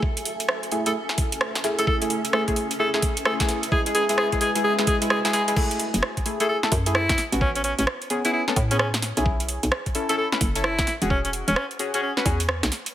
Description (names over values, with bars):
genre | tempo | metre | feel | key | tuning
UK garage, two-step garage | 130 BPM | 4/4 | swing 63% on 16ths | unclear | A4 = 440 Hz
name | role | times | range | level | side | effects
electronic kick drum | drums | 0.0-12.4 s | none | -25 LUFS | equal | overdrive, studio reverb
granular cloud pad | texture | 0.0-5.6 s | C#4 to G#5 | -34 LUFS | right 1 dB | built-in reverb, sidechain pumping
garage drum kit | drums | 0.2-12.9 s | crash cymbal, hi-hat, rim click, snare drum | -26 LUFS | right 1 dB | overdrive, high-pass filter on hats, studio reverb, high-pass filter on snare, high-pass filter on cymbals
deep mellow chord stab | stabs | 0.7-12.4 s | G#3 to B4 | -26 LUFS | left 1 dB | chorus, tape echo
edgy alto saxophone | melody | 0.9-12.1 s | C#4 to A4 | -26 LUFS | equal | tape echo
hollow knocking FM bass | bass | 5.9-12.7 s | E1 to A2 | -26 LUFS | equal | none
room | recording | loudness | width
light reverb, digital ambience | none | -20 LUFS | side -12 dB against mid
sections
0.0-5.6 A section; 5.6-12.9 B section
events
build-up 0.0-5.6; filter sweep on synth stab 0.0-5.6; drop 5.6-12.9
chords
0.0 Amaj7; 3.5 E69; 5.6 F#m9; 7.2 Amaj7; 9.3 B9sus4; 10.9 E69